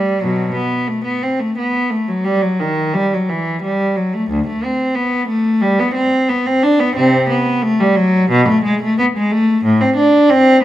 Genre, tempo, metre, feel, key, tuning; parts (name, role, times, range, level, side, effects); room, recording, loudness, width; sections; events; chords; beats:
classical, baroque-style suite movement for unaccompanied cello; 89 BPM; 4/4; rubato; A4 = 440 Hz
rich cello; solo; 0.0-10.6 s; D2 to D4; -13 LUFS; equal
moderate recital hall reverb, RT60 1.6 s; close, detailed microphones; -13 LUFS; side -13 dB against mid
0.0-10.6 A section
| 0.21 0.88 1.56 2.25 | 2.93 3.61 4.29 4.95 | 5.62 6.29 6.96 7.62 | 8.30 8.98 9.65 10.31